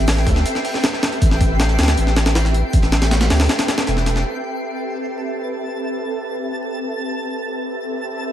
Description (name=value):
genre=drum and bass, jungle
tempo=158 BPM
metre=4/4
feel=straight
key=A minor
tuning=A4 = 440 Hz
part: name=ethereal airy pad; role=sustained chords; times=0.0-8.3 s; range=C4 to E5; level=-24 LUFS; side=right 1 dB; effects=ensemble chorus, built-in reverb
part: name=saturated sub bass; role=bass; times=0.0-4.2 s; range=E1 to D2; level=-17 LUFS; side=equal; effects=none
part: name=twinkling granular texture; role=texture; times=0.0-8.3 s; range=G5 to C7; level=-29 LUFS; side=left 2 dB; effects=built-in reverb
part: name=crunchy breakbeat drum kit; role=drums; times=0.1-4.2 s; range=hi-hat, shaker, snare drum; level=-32 LUFS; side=right 1 dB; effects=none
part: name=jungle sampler-style drum kit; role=drums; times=0.1-4.2 s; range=hi-hat, kick drum, snare drum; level=-18 LUFS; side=equal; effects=overdrive
room=light reverb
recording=vinyl crackle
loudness=-17 LUFS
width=side -11 dB against mid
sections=0.0-4.3 A section; 4.3-8.3 B section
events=drop 0.0-4.3; break 3.5-4.3; filter sweep on ambient pad 4.3-8.3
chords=0.0 Am9